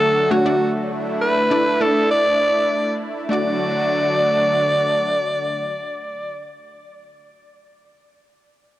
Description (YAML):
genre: pop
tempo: 100 BPM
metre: 4/4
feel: straight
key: D major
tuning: A4 = 440 Hz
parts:
  - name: raspy alto saxophone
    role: melody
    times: 0.0-6.5 s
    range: F#4 to D5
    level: -18 LUFS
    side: equal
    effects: cassette tape, analog delay
  - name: wide unison pluck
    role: accompaniment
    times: 0.0-7.2 s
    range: A3 to D5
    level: -23 LUFS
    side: equal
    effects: cassette tape
  - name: lush unison pad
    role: sustained chords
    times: 0.0-6.5 s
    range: D3 to F#4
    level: -24 LUFS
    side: right 1 dB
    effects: chorus, cassette tape
room: moderate spring reverb, RT60 2.0 s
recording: home recording on cassette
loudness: -17 LUFS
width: side -14 dB against mid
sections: 0.0-3.3 A section; 3.3-5.7 B section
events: none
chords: 0.0 Dmaj7; 0.9 Asus4; 3.3 D